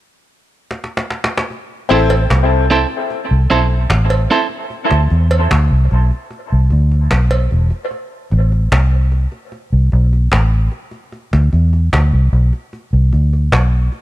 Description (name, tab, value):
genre	dub reggae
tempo	75 BPM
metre	4/4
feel	straight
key	A minor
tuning	A4 = 440 Hz
part	cajon	drums	0.7-14.0 s	none	-20 LUFS	equal	none
part	electric guitar at the edge of break-up	accompaniment	1.9-4.5 s	C4 to C5	-18 LUFS	right 4 dB	tremolo, high-pass filter, dub echo
part	bright upright piano	stabs	1.9-2.1 s	C4 to A4	-19 LUFS	left 5 dB	dub echo
part	vintage muted fingered electric bass	bass	1.9-13.9 s	E1 to E2	-12 LUFS	equal	none
part	cowbell	percussion	2.1-7.5 s	none	-25 LUFS	right 3 dB	dub echo
room	small room ambience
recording	none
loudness	-12 LUFS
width	side -15 dB against mid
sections	0.0-1.5 A section; 1.5-14.0 B section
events	break 0.0-1.5; drum fill 0.7-1.5; part muted 7.9-14.0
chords	0.0 N.C.; 1.5 Am; 4.7 Cmaj9; 7.9 Am; 11.1 Bmadd11